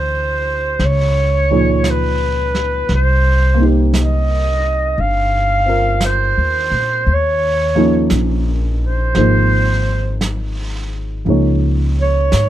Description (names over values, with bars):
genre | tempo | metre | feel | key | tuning
jazz ballad | 57 BPM | 4/4 | swing 67% on 8ths | unclear | A4 = 440 Hz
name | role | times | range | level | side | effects
breathy clarinet | melody | 0.0-12.5 s | Cb5 to F5 | -17 LUFS | right 2 dB | none
warm baby grand piano | accompaniment | 0.0-12.5 s | Bb2 to Db5 | -20 LUFS | right 1 dB | none
upright bass | bass | 0.0-12.5 s | G1 to Bb2 | -16 LUFS | equal | none
vintage brush drum kit | drums | 0.8-12.5 s | brushed snare drum, hi-hat, snare drum | -27 LUFS | right 2 dB | none
room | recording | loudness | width
little or no reverb | close, detailed microphones | -13 LUFS | side -12 dB against mid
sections
0.0-12.5 A section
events
none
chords
0.0 Dsus2; 0.8 Db9; 2.9 Cm7; 7.1 Ebsus2; 9.2 Ab; 11.3 Dbadd9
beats
0.79 1.83 | 2.88 3.92 4.96 6.01 | 7.05 8.11 9.15 10.21 | 11.27 12.32